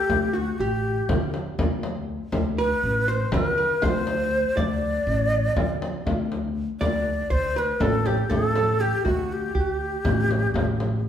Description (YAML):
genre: Turkish makam ensemble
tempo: 241 BPM (eighths)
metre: 9/8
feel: straight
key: D makam hicaz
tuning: A4 = 440 Hz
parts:
  - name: breathy ney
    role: melody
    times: 0.0-11.0 s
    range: F#4 to D5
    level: -25 LUFS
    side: left 1 dB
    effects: none
  - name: archtop guitar, miked and amplified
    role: second line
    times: 0.0-11.0 s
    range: F#4 to D5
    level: -30 LUFS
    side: right 3 dB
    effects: none
  - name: upright bass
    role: bass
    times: 0.1-11.1 s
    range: A1 to D3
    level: -26 LUFS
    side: equal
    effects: none
  - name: frame drum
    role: percussion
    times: 0.1-10.9 s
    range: none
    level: -28 LUFS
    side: left 1 dB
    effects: none
room: wet large studio reverb, RT60 1.3 s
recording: band playing live in one room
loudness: -21 LUFS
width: side -9 dB against mid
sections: 0.0-6.8 A section; 6.8-11.1 B section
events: none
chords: none